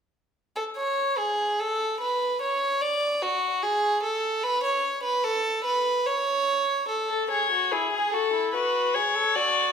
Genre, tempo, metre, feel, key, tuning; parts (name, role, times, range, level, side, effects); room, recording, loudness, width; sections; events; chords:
classical, baroque-style fugue for string quartet; 73 BPM; 4/4; straight; A major; A4 = 439 Hz
rich violin; second line; 0.6-9.7 s; E4 to D5; -24 LUFS; right 1 dB
rich violin; melody; 7.1-9.7 s; G#4 to D5; -23 LUFS; left 4 dB
wet recital hall reverb, RT60 1.4 s; minimal, uncompressed stereo recording; -23 LUFS; side -7 dB against mid
0.4-6.9 A section; 6.9-9.7 B section
0.4 N.C.; 6.9 A; 8.5 Bm/F#